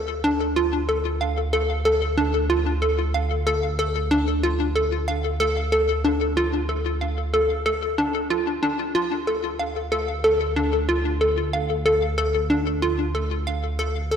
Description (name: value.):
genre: ambient, sequencer-driven space music.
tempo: 93 BPM.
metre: 4/4.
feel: straight.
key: D minor.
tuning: A4 = 440 Hz.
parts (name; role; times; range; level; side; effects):
hollow square pluck; riff; 0.0-14.2 s; D4 to F5; -21 LUFS; left 1 dB; chorus, ping-pong delay.
fat analog bass; bass; 0.0-14.2 s; D2; -27 LUFS; right 1 dB; none.
room: wet plate reverb, RT60 2.5 s.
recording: dreamy mix soaked in reverb.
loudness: -20 LUFS.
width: side -8 dB against mid.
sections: 0.0-14.2 A section.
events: fade-out 12.1-14.2.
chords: 0.0 Dm.